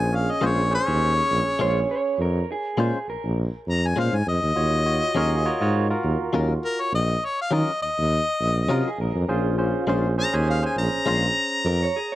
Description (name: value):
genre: blues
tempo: 102 BPM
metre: 4/4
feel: swing 55% on 16ths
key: Bb minor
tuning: A4 = 440 Hz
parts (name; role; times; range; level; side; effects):
- clear harmonica; melody; 0.0-12.2 s; Bb4 to Bb5; -24 LUFS; left 2 dB; none
- barky tine electric piano; accompaniment; 0.0-11.7 s; Db4 to Db5; -27 LUFS; right 3 dB; medium stereo tremolo
- warm tuba; bass; 0.0-11.9 s; Bb1 to Eb3; -24 LUFS; equal; none
- direct-recorded clean electric guitar; stabs; 0.4-11.3 s; Gb3 to C5; -26 LUFS; left 4 dB; analog chorus
- electric guitar through a small old amp; second line; 1.6-12.2 s; F4 to Db5; -29 LUFS; right 2 dB; tape echo
room: little or no reverb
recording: dry, close 1970s-style studio recording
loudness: -20 LUFS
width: side -15 dB against mid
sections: 0.0-12.2 A section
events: none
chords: 0.0 Bbm9; 4.6 Ebm9; 9.3 Bbm9